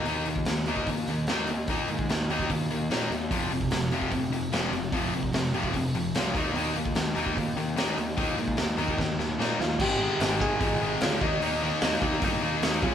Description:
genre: punk rock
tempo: 148 BPM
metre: 4/4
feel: straight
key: unclear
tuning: A4 = 438 Hz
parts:
  - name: sludgy distorted guitar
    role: riff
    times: 0.0-12.9 s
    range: F2 to Eb4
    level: -33 LUFS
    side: right 9 dB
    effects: overdrive
  - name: tight distorted guitar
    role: riff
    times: 0.0-12.9 s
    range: F2 to Eb4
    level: -29 LUFS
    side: left 5 dB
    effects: distortion
  - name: fuzz picked electric bass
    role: bass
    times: 0.0-12.9 s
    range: F1 to Bb2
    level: -34 LUFS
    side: equal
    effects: overdrive
  - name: raw garage drum kit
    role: drums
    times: 0.1-12.9 s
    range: crash cymbal, hi-hat, kick drum, snare drum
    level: -30 LUFS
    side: equal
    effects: none
  - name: bell-like tine electric piano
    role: melody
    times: 9.6-12.9 s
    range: Eb4 to Ab5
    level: -30 LUFS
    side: equal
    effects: medium stereo tremolo
room: light reverb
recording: band playing live in one room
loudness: -25 LUFS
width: side -9 dB against mid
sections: 0.0-9.8 A section; 9.8-12.9 B section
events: drum fill 9.0-9.8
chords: 0.0 Eb5; 3.3 F5; 6.4 Eb5; 9.8 Ab5; 11.2 Eb5

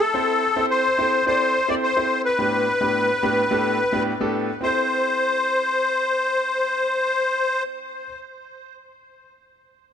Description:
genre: pop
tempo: 107 BPM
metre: 4/4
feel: straight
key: A minor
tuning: A4 = 439 Hz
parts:
  - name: musette accordion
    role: melody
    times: 0.0-7.6 s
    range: A4 to D5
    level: -20 LUFS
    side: left 2 dB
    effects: ping-pong delay
  - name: clear grand piano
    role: accompaniment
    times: 0.1-8.1 s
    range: A2 to D5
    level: -25 LUFS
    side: right 1 dB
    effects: none
room: moderate lush hall reverb, RT60 2.7 s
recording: none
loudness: -19 LUFS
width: side -8 dB against mid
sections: 0.1-4.6 A section; 4.6-6.9 B section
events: none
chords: 0.1 Am; 2.4 G/A; 4.6 Am

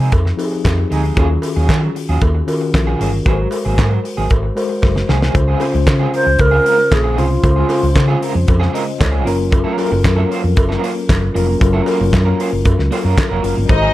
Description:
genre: disco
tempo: 115 BPM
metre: 4/4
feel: straight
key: unclear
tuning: A4 = 441 Hz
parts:
  - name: electric guitar at the edge of break-up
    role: accompaniment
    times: 0.0-13.9 s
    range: Gb3 to C5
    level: -23 LUFS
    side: right 5 dB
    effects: tremolo
  - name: mellow tine electric piano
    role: accompaniment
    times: 0.0-13.9 s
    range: Db3 to Eb5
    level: -20 LUFS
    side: left 3 dB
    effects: medium stereo tremolo
  - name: hollow-body short-scale fingered electric bass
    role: bass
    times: 0.0-13.9 s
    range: F1 to Eb3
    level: -16 LUFS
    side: equal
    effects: none
  - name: damped 70s drum kit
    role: drums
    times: 0.1-13.8 s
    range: handclaps, hi-hat, kick drum, snare drum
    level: -18 LUFS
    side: equal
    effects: none
  - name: cowbell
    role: percussion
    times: 0.1-13.8 s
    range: none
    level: -26 LUFS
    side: right 1 dB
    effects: none
  - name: alto flute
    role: melody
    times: 6.1-8.2 s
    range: F4 to C5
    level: -15 LUFS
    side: right 1 dB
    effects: none
  - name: rich studio violin section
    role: second line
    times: 13.7-13.9 s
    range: Eb4 to Eb5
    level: -15 LUFS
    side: left 2 dB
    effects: none
room: little or no reverb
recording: none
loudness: -13 LUFS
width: side -15 dB against mid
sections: 0.0-5.4 A section; 5.4-13.9 B section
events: drum fill 4.8-5.4; tine electric piano fill 8.5-9.5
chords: 0.0 Fm7; 1.2 Ebm11; 3.3 Ab9; 5.4 Dbmaj7; 9.3 Gbmaj7

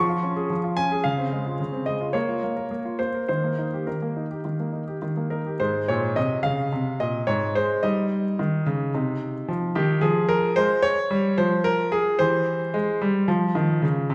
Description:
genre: classical-period piano sonatina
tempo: 110 BPM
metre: 4/4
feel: rubato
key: Ab major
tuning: A4 = 440 Hz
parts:
  - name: clear baby grand piano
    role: solo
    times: 0.0-14.1 s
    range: Ab2 to Db6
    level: -24 LUFS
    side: equal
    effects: none
room: wet recital hall reverb, RT60 1.8 s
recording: recorded in a church or concert hall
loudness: -24 LUFS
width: mono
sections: 0.0-5.6 A section; 5.6-14.1 B section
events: none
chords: 0.0 Db/F; 1.0 Dbmaj7; 2.1 Bbm; 3.3 Eb; 5.6 Ab; 7.8 Eb/G; 8.9 Cmadd11; 10.0 Fm; 12.2 C/E; 13.3 F5

